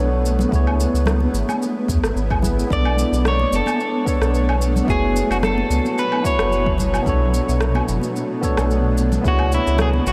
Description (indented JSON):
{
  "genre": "sunset chillout",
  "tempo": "110 BPM",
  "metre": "4/4",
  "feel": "swing 54% on 16ths",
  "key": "B dorian",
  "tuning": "A4 = 440 Hz",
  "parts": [
    { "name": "barky tine electric piano", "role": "accompaniment", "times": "0.0-10.1 s", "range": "B3 to D5", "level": "-26 LUFS", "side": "equal", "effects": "overdrive, analog delay" },
    { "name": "shimmering ambient pad", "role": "sustained chords", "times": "0.0-10.1 s", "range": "B2 to E4", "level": "-28 LUFS", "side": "equal", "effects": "chorus, built-in reverb" },
    { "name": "warm sub bass", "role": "bass", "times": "0.0-10.1 s", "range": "F#1 to E2", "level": "-22 LUFS", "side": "equal", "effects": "tube saturation" },
    { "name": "electronic shaker, woodblock and rim click", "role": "drums", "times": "0.3-10.1 s", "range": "none", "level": "-30 LUFS", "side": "equal", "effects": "overdrive" },
    { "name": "congas", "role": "percussion", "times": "0.4-10.0 s", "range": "none", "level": "-32 LUFS", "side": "equal", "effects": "none" },
    { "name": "electronic kick drum", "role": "drums", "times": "0.5-9.4 s", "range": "none", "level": "-25 LUFS", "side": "equal", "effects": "overdrive" },
    { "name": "electric guitar at the edge of break-up", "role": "melody", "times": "2.7-10.1 s", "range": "E4 to D5", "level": "-26 LUFS", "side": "equal", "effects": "diffuse ambient delay" }
  ],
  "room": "wet huge ambient reverb, RT60 8.2 s",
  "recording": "dreamy mix soaked in reverb",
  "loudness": "-19 LUFS",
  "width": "mono",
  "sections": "0.0-10.1 A section",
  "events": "none",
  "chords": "0.0 Bm9; 0.5 C#m7; 2.7 Bm9; 4.9 F#7sus4; 7.1 Bm9; 9.2 C#m7"
}